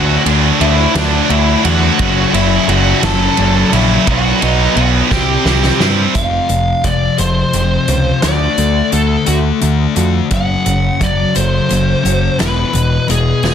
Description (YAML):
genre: quiet-loud alternative rock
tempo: 58 BPM (dotted quarters)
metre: 6/8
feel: straight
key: unclear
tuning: A4 = 440 Hz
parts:
  - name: smooth overdriven lead guitar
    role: melody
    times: 0.0-13.5 s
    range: D4 to A5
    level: -18 LUFS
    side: left 1 dB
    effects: digital delay
  - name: distorted electric guitar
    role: riff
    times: 0.0-6.1 s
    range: F#2 to D4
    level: -19 LUFS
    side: equal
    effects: overdrive
  - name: scooped high-gain guitar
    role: riff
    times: 0.0-6.1 s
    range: F#2 to E4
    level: -18 LUFS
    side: right 16 dB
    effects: distortion
  - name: thick fuzz guitar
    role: riff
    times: 0.0-13.5 s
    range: E2 to D4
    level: -17 LUFS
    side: left 8 dB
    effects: distortion
  - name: growling picked electric bass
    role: bass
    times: 0.0-13.5 s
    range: E1 to G2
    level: -16 LUFS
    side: right 1 dB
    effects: overdrive
  - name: loose indie drum kit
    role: drums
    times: 0.3-13.5 s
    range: hi-hat, kick drum, ride cymbal, snare drum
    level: -19 LUFS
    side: right 1 dB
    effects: none
  - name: picked steel-string acoustic guitar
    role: arpeggios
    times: 6.1-13.5 s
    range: E2 to F#4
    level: -22 LUFS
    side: right 5 dB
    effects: none
room: light reverb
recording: dense, heavily limited modern master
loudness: -11 LUFS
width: side -8 dB against mid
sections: 0.0-6.2 A section; 6.2-13.5 B section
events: drum fill 5.1-6.2; half time 6.2-13.5; lead electric guitar solo 6.2-13.5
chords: 0.0 D; 2.0 F#m; 4.1 B; 5.1 C; 6.2 Fm; 8.2 D; 10.3 F#m; 12.4 E